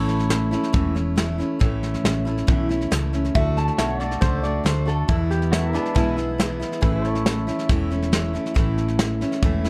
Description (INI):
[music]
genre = honky-tonk and classic country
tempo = 138 BPM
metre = 4/4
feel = straight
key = A major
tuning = A4 = 440 Hz
[part]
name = picked steel-string acoustic guitar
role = accompaniment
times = 0.0-9.7 s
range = E2 to F#4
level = -27 LUFS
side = equal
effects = none
[part]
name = pedal steel guitar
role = sustained chords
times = 0.0-9.7 s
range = E4 to E5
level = -34 LUFS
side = equal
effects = none
[part]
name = hollow-body short-scale fingered electric bass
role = bass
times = 0.0-9.7 s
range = E1 to E2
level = -27 LUFS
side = equal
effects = none
[part]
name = soft brush drum kit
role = drums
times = 0.1-9.7 s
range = hi-hat, kick drum, snare drum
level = -26 LUFS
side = equal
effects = none
[part]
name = lap resonator guitar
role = second line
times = 3.4-6.6 s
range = D4 to A5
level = -29 LUFS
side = equal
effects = none
[sound]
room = light reverb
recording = dark, warm production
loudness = -22 LUFS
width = mono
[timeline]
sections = 0.0-9.7 A section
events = none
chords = 0.0 A; 3.4 D; 5.1 E; 6.8 A